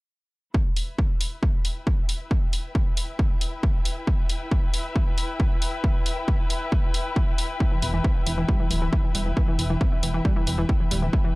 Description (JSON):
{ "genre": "driving peak-time techno", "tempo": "136 BPM", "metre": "4/4", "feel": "straight", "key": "E minor", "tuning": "A4 = 441 Hz", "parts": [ { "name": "electronic kick drum", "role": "drums", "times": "0.5-11.2 s", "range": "none", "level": "-22 LUFS", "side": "equal", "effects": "overdrive, studio reverb" }, { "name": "muted studio string section", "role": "texture", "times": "0.5-11.4 s", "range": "E4 to G5", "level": "-33 LUFS", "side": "left 2 dB", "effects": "sidechain pumping" }, { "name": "electronic hi-hat", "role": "drums", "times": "0.8-11.0 s", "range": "none", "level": "-30 LUFS", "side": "equal", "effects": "overdrive, sidechain pumping on hats, studio reverb" }, { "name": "analog pluck", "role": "riff", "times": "7.6-11.3 s", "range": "E3 to E4", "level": "-28 LUFS", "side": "equal", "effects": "chorus, sidechain pumping, analog delay" }, { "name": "dark detuned saw bass", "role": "bass", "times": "7.8-11.1 s", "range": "D1 to E1", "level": "-26 LUFS", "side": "equal", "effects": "tube saturation, sidechain pumping" } ], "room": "little or no reverb", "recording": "dry, gritty hardware recording, transformer saturation", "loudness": "-22 LUFS", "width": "side -24 dB against mid", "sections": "0.5-11.4 A section", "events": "fade-in on string section 0.5-11.4", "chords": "0.5 Em", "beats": "| 0.54 0.98 1.43 1.87 | 2.31 2.75 3.19 3.63 | 4.07 4.51 4.96 5.40 | 5.84 6.28 6.72 7.16 | 7.60 8.04 8.48 8.93 | 9.37 9.81 10.25 10.69 | 11.13" }